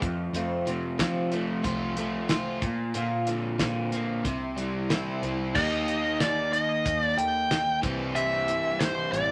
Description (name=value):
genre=folk rock and heartland rock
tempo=92 BPM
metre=4/4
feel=straight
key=unclear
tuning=A4 = 439 Hz
part: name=picked steel-string acoustic guitar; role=accompaniment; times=0.0-9.3 s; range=F2 to G4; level=-37 LUFS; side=equal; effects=none
part: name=crunchy overdriven guitar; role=riff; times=0.0-9.3 s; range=F2 to G4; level=-33 LUFS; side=equal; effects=none
part: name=fingered electric bass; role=bass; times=0.0-9.3 s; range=A1 to F3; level=-40 LUFS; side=equal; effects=none
part: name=damped 70s drum kit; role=drums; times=0.0-9.3 s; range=crash cymbal, hi-hat, kick drum, snare drum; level=-32 LUFS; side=equal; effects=none
part: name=bluesy overdriven lead guitar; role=melody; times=5.6-9.3 s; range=C5 to G5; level=-28 LUFS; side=equal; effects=distortion
part: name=warm grand piano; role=accompaniment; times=5.6-9.1 s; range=Eb4 to C5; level=-48 LUFS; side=equal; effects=none
room=moderate studio reverb, RT60 0.7 s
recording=none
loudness=-28 LUFS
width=mono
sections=0.0-5.6 A section; 5.6-9.3 B section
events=none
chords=0.0 F; 2.6 Bbadd9; 4.3 C; 5.6 Eb; 7.8 C